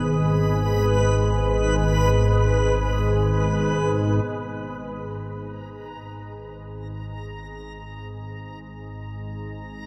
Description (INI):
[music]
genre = dark ambient drone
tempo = free time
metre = none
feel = none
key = G# minor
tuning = A4 = 440 Hz
[part]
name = dark analog pad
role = sustained chords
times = 0.0-4.3 s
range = B3 to D#5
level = -36 LUFS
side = equal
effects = none
[part]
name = organ-like drone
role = drone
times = 0.0-9.9 s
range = G#1 to G#2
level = -25 LUFS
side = equal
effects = ensemble chorus, built-in reverb
[part]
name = backwards swelling texture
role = texture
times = 0.0-9.9 s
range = B4 to A#5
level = -32 LUFS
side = equal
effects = built-in reverb, shimmer reverb
[sound]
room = wet huge ambient reverb, RT60 8.3 s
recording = dark, warm production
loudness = -22 LUFS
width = mono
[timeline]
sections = 0.0-4.3 A section; 4.3-9.9 B section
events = none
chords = 0.0 G#m; 4.3 G#sus2